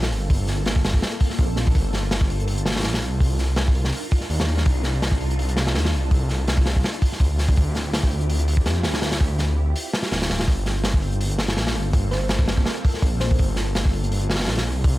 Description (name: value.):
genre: drum and bass, jungle.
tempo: 165 BPM.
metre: 4/4.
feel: swing 54% on 16ths.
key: G minor.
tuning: A4 = 439 Hz.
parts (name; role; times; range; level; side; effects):
soft string machine; sustained chords; 0.0-15.0 s; Bb3 to Bb4; -32 LUFS; equal; phaser, ensemble chorus.
detuned saw bass; bass; 0.0-15.0 s; D1 to F2; -23 LUFS; equal; none.
crunchy breakbeat drum kit; drums; 0.0-14.9 s; hi-hat, kick drum, snare drum; -21 LUFS; equal; none.
thumb-piano-like synth pluck; melody; 12.1-13.6 s; C5; -33 LUFS; right 1 dB; chorus, dub echo.
room: small room ambience.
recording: none.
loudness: -19 LUFS.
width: side -17 dB against mid.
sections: 0.0-15.0 A section.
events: none.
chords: 0.0 Gm11; 3.2 Cm11; 6.8 Dm11; 10.5 Gm11.